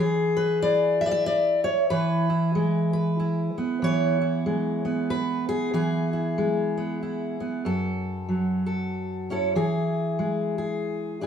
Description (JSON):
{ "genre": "folk, solo fingerstyle acoustic guitar", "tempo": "94 BPM", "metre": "3/4", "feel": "swing 60% on 8ths", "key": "unclear", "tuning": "A4 = 444 Hz", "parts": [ { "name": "fingerpicked steel-string acoustic guitar", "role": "solo", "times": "0.0-11.3 s", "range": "F#2 to E5", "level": "-23 LUFS", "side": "equal", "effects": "none" } ], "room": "wet stone room reverb, RT60 1.1 s", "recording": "band playing live in one room, small room ambience", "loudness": "-23 LUFS", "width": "side -8 dB against mid", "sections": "0.0-7.7 A section; 7.7-11.3 B section", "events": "none", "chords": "0.0 E; 7.7 F#m7; 9.6 E" }